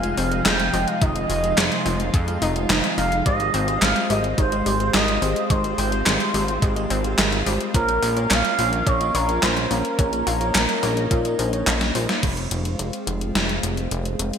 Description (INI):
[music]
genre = synthwave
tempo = 107 BPM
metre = 4/4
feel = straight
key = F minor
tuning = A4 = 438 Hz
[part]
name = expressive portamento lead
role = melody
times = 0.0-12.0 s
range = Bb4 to G5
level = -24 LUFS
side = right 1 dB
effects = lush chorus, ping-pong delay
[part]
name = lush unison pad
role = sustained chords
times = 0.0-14.4 s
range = C3 to Ab4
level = -29 LUFS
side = equal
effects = chorus, sidechain pumping
[part]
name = analog pluck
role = arpeggios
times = 0.0-12.1 s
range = Eb3 to Db5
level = -30 LUFS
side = left 2 dB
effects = chorus, vintage 12-bit sampler grit, ping-pong delay
[part]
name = FM electric piano with soft pad layer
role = stabs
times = 0.0-12.2 s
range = Ab3 to F5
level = -29 LUFS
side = right 1 dB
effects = chorus, tremolo
[part]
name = chorused synth bass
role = bass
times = 0.0-14.3 s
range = F1 to Bb2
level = -25 LUFS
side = equal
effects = sidechain pumping
[part]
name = gated 80s digital drum machine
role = drums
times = 0.0-14.4 s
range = crash cymbal, handclaps, hi-hat, snare drum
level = -23 LUFS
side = equal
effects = gated reverb, gated reverb snare, overdrive
[part]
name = electronic kick drum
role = drums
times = 1.0-12.3 s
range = none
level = -22 LUFS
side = equal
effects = overdrive
[sound]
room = moderate lush hall reverb, RT60 2.2 s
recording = bright 1980s-style digital production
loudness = -18 LUFS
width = side -7 dB against mid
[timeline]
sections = 0.0-12.2 A section; 12.2-14.4 B section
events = drum fill 11.7-12.2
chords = 0.0 Fm7; 3.3 Abmaj7; 7.7 Bbm; 12.2 Fm